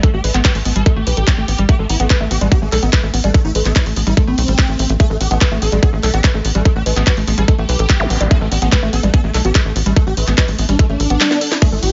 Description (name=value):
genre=psychedelic trance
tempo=145 BPM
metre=4/4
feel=straight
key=A minor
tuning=A4 = 441 Hz
part: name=swarming rave lead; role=melody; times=0.0-11.9 s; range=A3 to A4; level=-25 LUFS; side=equal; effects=chorus, phaser, sidechain pumping, digital delay
part: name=woody wave-folded pluck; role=riff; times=0.0-11.9 s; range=G3 to B4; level=-24 LUFS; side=equal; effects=chorus, sidechain pumping, digital delay
part: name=electronic kick drum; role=drums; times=0.0-11.7 s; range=none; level=-14 LUFS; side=equal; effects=none
part: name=garage drum kit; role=drums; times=0.0-11.9 s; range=crash cymbal, handclaps, hi-hat, snare drum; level=-23 LUFS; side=equal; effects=none
part: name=impact and zap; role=sound effects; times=0.0, 8.0-8.1 s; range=none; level=-26 LUFS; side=equal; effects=none
part: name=tight sequencer bass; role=bass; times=0.1-11.9 s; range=A1 to B1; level=-19 LUFS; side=equal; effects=none
part: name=evolving wavetable pad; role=sustained chords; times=11.8-11.9 s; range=A3 to E4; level=-29 LUFS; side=equal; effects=chorus, built-in reverb, sidechain pumping
room=little or no reverb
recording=nothing above 7.6 kHz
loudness=-15 LUFS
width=mono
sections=0.0-11.9 A section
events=kick drops out 11.2-11.6; drum fill 11.2-11.6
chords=0.0 A5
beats=| 0.03 0.45 0.86 1.27 | 1.69 2.10 2.52 2.93 | 3.34 3.76 4.17 4.58 | 5.00 5.41 5.83 6.24 | 6.65 7.07 7.48 7.90 | 8.31 8.72 9.14 9.55 | 9.96 10.38 10.79 11.21 | 11.62